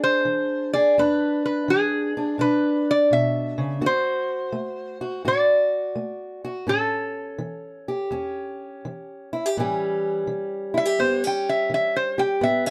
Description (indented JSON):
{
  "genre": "acoustic country blues, solo or duo",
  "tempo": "84 BPM",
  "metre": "4/4",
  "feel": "swing 67% on 8ths",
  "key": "A mixolydian",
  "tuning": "A4 = 441 Hz",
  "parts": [
    { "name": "lap resonator guitar", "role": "melody", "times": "0.0-12.7 s", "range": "G#4 to G5", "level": "-24 LUFS", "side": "equal", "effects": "none" },
    { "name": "fingerpicked steel-string acoustic guitar", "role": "accompaniment", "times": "0.0-12.7 s", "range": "E2 to G#4", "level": "-28 LUFS", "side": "equal", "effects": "none" }
  ],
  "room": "light reverb",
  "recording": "close, detailed microphones",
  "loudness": "-23 LUFS",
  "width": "mono",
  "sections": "0.0-9.6 A section; 9.6-12.7 B section",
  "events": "resonator guitar played with a steel bar solo 9.6-12.7",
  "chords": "0.0 E7; 3.8 D7; 6.7 A7"
}